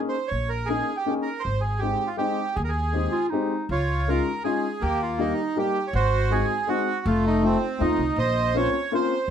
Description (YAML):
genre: musette waltz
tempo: 161 BPM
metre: 3/4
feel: straight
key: Ab major, Db major from 3.7 s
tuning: A4 = 440 Hz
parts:
  - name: warm upright piano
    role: accompaniment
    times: 0.0-9.1 s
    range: G3 to Ab4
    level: -27 LUFS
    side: left 5 dB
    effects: none
  - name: bandoneon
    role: melody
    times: 0.1-9.3 s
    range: A3 to Eb5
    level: -25 LUFS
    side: right 4 dB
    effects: none
  - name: upright bass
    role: bass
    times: 0.3-9.3 s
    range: F1 to Eb2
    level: -26 LUFS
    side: equal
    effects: none
  - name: mellow clarinet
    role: second line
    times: 3.1-3.7 s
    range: Eb4 to F4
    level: -27 LUFS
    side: right 2 dB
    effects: none
room: moderate small room reverb, RT60 0.5 s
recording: none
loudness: -22 LUFS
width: side -8 dB against mid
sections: 0.0-3.7 A section; 3.7-9.3 B section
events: none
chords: 0.0 Eb7sus4; 1.4 Abmaj7; 3.7 Dbadd9; 4.8 Eb; 5.9 Ab7; 7.0 F7; 8.2 Bbmadd9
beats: | 0.32 0.69 1.06 | 1.44 1.81 2.18 | 2.56 2.93 3.31 | 3.69 4.07 4.45 | 4.82 5.19 5.57 | 5.94 6.31 6.68 | 7.05 7.42 7.79 | 8.17 8.54 8.91 | 9.29